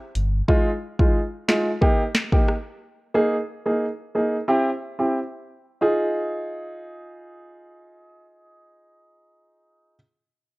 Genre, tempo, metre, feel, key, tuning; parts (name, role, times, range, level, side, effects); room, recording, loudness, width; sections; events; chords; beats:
dancehall; 90 BPM; 4/4; straight; F minor; A4 = 444 Hz
afro-pop drum kit; drums; 0.2-2.6 s; hi-hat, kick drum, rim click, snare drum; -20 LUFS; equal
warm grand piano; accompaniment; 0.5-9.9 s; Ab3 to Ab4; -22 LUFS; right 1 dB
light reverb, digital ambience; worn, warbling old tape, cassette tape, warbly pitch drift; -20 LUFS; side -23 dB against mid
0.0-5.8 A section; 5.8-8.5 B section
0.5 Fm7; 1.8 Eb; 3.1 Absus2; 4.5 C; 5.8 Fm7
| 0.48 1.15 1.82 2.48 | 3.15 3.82 4.48 5.15 | 5.82 6.48 7.15 7.82